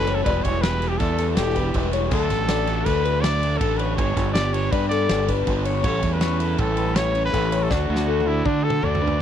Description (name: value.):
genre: math rock and midwest emo.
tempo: 161 BPM.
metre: 5/4.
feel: straight.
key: D major.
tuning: A4 = 440 Hz.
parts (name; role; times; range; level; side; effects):
warm trumpet; melody; 0.0-9.2 s; D4 to D5; -26 LUFS; right 1 dB; slapback echo.
electric guitar through a small old amp; arpeggios; 0.0-9.2 s; D4 to D5; -27 LUFS; left 10 dB; phaser.
crunchy overdriven guitar; riff; 0.0-9.2 s; G2 to F#4; -27 LUFS; right 2 dB; none.
growling fingered electric bass; bass; 0.0-9.2 s; E1 to D3; -24 LUFS; right 1 dB; overdrive.
loose indie drum kit; drums; 0.1-9.2 s; crash cymbal, kick drum, ride cymbal, snare drum, toms; -27 LUFS; equal; none.
room: small room ambience.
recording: dry, close 1970s-style studio recording.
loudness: -19 LUFS.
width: side -9 dB against mid.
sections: 0.0-9.2 A section.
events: drum fill 7.7-9.2.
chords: 0.3 Em7; 2.1 D6; 4.0 G; 5.8 A7; 7.7 D6.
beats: | 0.26 0.63 1.00 1.37 1.75 | 2.12 2.49 2.86 3.23 3.61 | 3.98 4.35 4.72 5.10 5.47 | 5.84 6.22 6.59 6.96 7.33 | 7.71 8.08 8.45 8.82 9.20.